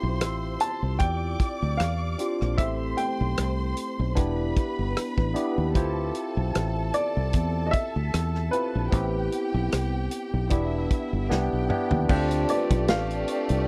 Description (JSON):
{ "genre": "lush 1970s-style soul", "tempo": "76 BPM", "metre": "4/4", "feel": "swing 54% on 16ths", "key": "D dorian", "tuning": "A4 = 438 Hz", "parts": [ { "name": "warm symphonic violin section", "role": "second line", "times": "0.0-13.7 s", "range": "A3 to D6", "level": "-37 LUFS", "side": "equal", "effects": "none" }, { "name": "barky tine electric piano", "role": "accompaniment", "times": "0.0-13.7 s", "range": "A3 to G4", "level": "-32 LUFS", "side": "equal", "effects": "phaser" }, { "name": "fingered electric bass", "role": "bass", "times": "0.0-13.7 s", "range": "E1 to E2", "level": "-29 LUFS", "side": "equal", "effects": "none" }, { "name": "warm soul drum kit", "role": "drums", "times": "0.2-13.7 s", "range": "crash cymbal, hi-hat, kick drum, rim click, snare drum, toms", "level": "-29 LUFS", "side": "equal", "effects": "none" }, { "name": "vibraphone with soft mallets", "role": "texture", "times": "0.2-13.7 s", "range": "C4 to E6", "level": "-42 LUFS", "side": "equal", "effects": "none" }, { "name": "dark baby grand piano", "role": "melody", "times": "0.6-13.6 s", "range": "B4 to A5", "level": "-32 LUFS", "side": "equal", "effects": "none" } ], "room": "little or no reverb", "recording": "dry, close 1970s-style studio recording", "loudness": "-26 LUFS", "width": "mono", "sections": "0.0-12.1 A section; 12.1-13.7 B section", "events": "drum fill 11.3-12.1", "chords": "0.0 Dm11; 2.6 Am9; 4.2 Em7; 5.8 Dm11; 8.9 Am9; 10.5 Em7; 11.3 Cmaj9; 12.1 Dm11", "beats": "0.21 1.00 1.79 | 2.58 3.37 4.17 4.96 | 5.75 6.54 7.34 8.13 | 8.92 9.72 10.51 11.30 | 12.09 12.88 13.67" }